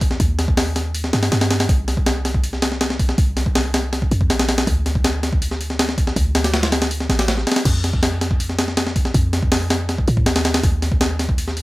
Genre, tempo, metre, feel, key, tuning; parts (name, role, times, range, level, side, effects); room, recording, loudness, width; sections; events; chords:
drum and bass, jungle; 161 BPM; 4/4; straight; A4 = 441 Hz
warm 808-style bass; bass; 0.0-11.6 s; A1 to A2; -22 LUFS; equal
breakbeat sampler-style drum kit; drums; 0.0-11.6 s; crash cymbal, hi-hat, kick drum, snare drum; -18 LUFS; equal; small room ambience
little or no reverb; -16 LUFS; side -19 dB against mid
0.0-7.7 A section; 7.7-11.6 A section
drop 0.0-7.7, 7.7-11.6; kick drops out 6.9-7.7